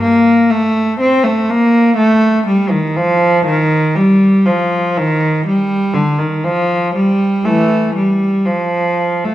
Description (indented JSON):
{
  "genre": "classical, baroque-style suite movement for unaccompanied cello",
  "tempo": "60 BPM",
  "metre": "4/4",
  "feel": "rubato",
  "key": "unclear",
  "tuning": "A4 = 440 Hz",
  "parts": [
    { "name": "rich cello", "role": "solo", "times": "0.0-9.3 s", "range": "D3 to C4", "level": "-11 LUFS", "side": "equal", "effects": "none" }
  ],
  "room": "moderate recital hall reverb, RT60 1.4 s",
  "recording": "dark, warm production",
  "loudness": "-11 LUFS",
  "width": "side -14 dB against mid",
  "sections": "0.0-9.3 A section",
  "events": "none",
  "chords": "none"
}